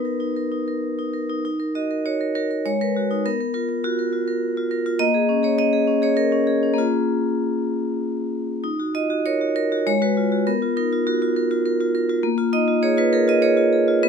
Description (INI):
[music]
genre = classical, contemporary piece for solo vibraphone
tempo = 100 BPM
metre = 3/4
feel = rubato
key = unclear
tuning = A4 = 440 Hz
[part]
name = vibraphone with medium hard mallets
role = solo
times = 0.0-14.1 s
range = Ab3 to Eb5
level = -19 LUFS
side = equal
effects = none
[sound]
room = light reverb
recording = close, detailed microphones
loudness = -19 LUFS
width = side -6 dB against mid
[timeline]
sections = 0.0-8.6 A section; 8.6-14.1 A section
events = none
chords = 0.0 Bmaj7; 1.4 Ebm; 2.6 Abm9; 3.2 B5; 5.0 Bbm7; 8.6 Ebm; 9.9 Abm7; 10.5 Bmaj7#11; 12.2 Bbm7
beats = 0.20 0.82 | 1.43 2.04 2.65 | 3.24 3.83 4.41 | 5.00 5.58 6.18 | 6.79 7.41 8.03 | 8.65 9.26 9.88 | 10.48 11.07 11.66 | 12.25 12.83 13.42 | 14.03